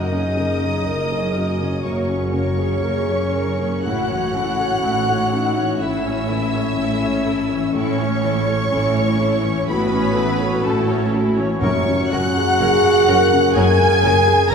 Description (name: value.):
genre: cinematic, emotional film score for orchestra.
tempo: 62 BPM.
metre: 4/4.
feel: rubato.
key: unclear.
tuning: A4 = 440 Hz.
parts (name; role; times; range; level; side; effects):
warm symphonic violin section; melody; 0.0-14.5 s; A5 to A#6; -27 LUFS; equal; none.
mellow hollow concert flute; second line; 0.0-14.5 s; A4 to A#5; -26 LUFS; equal; none.
warm clarinet; second line; 0.0-14.5 s; A3 to A#4; -26 LUFS; right 1 dB; none.
warm studio violin section; second line; 0.0-14.5 s; A4 to A#5; -25 LUFS; left 1 dB; none.
felt-muted upright piano; accompaniment; 0.0-14.5 s; F#2 to A#4; -24 LUFS; left 1 dB; none.
rich symphonic viola section; accompaniment; 0.0-14.5 s; A#3 to C#5; -29 LUFS; right 1 dB; none.
dark French horn section; sustained chords; 0.0-14.5 s; C#4 to A#4; -23 LUFS; left 3 dB; none.
warm symphonic cello section; bass; 0.0-14.5 s; F#2 to A2; -26 LUFS; right 2 dB; none.
warm symphonic double bass section; bass; 0.0-14.5 s; F#1 to A1; -26 LUFS; right 3 dB; none.
timpani; percussion; 11.6-13.0 s; F#2; -30 LUFS; equal; none.
room: wet concert hall reverb, RT60 2.2 s.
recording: heard from further back in the room.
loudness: -16 LUFS.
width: side -6 dB against mid.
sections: 0.0-14.5 A section.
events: none.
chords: 0.0 F#add9; 3.8 A; 11.6 F#add9.